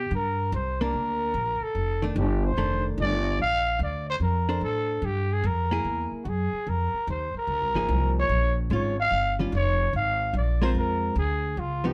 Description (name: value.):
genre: jazz, small-group swing and bop.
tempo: 147 BPM.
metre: 4/4.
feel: swing 65% on 8ths.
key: unclear.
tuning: A4 = 440 Hz.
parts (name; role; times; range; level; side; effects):
growling trumpet; melody; 0.0-11.9 s; F4 to F5; -30 LUFS; equal; none.
upright bass; bass; 0.0-11.9 s; F1 to B2; -29 LUFS; equal; none.
hollow-body jazz guitar; accompaniment; 0.8-11.9 s; Eb3 to C5; -32 LUFS; equal; none.
room: light reverb.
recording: none.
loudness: -26 LUFS.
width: mono.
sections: 0.1-11.9 A section.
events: none.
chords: 0.1 Csus2; 1.8 F13; 3.4 Bbmaj9; 5.0 Fmadd9; 5.8 Eadd9; 6.7 Fm7; 8.3 Bbm7; 9.1 Eb9; 9.9 Ab69.